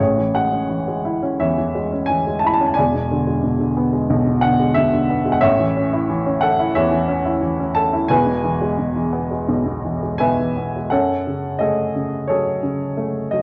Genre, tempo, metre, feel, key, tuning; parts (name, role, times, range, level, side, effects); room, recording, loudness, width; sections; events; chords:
classical, lyrical solo piano; 88 BPM; 4/4; rubato; A major; A4 = 440 Hz
warm baby grand piano; solo; 0.0-13.4 s; E1 to B5; -19 LUFS; equal
moderate scoring stage reverb, RT60 1.8 s; worn, warbling old tape, cassette tape, warbly pitch drift; -19 LUFS; mono
0.0-10.9 A section; 10.9-13.4 B section
0.0 Amaj7; 2.8 E7; 5.4 A; 8.1 E; 10.9 F#madd9